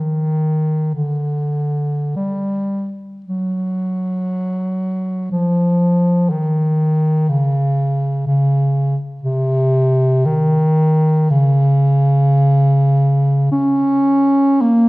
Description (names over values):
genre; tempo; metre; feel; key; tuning
classical, free, expressive piece for unaccompanied bass clarinet; 47-64 BPM; 4/4; rubato; unclear; A4 = 440 Hz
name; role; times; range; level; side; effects
dark bass clarinet; solo; 0.0-14.9 s; C3 to Db4; -14 LUFS; equal; none
room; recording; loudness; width
wet recital hall reverb, RT60 1.5 s; worn, warbling old tape, cassette tape, warbly pitch drift; -14 LUFS; side -23 dB against mid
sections
0.0-14.9 A section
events
none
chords
none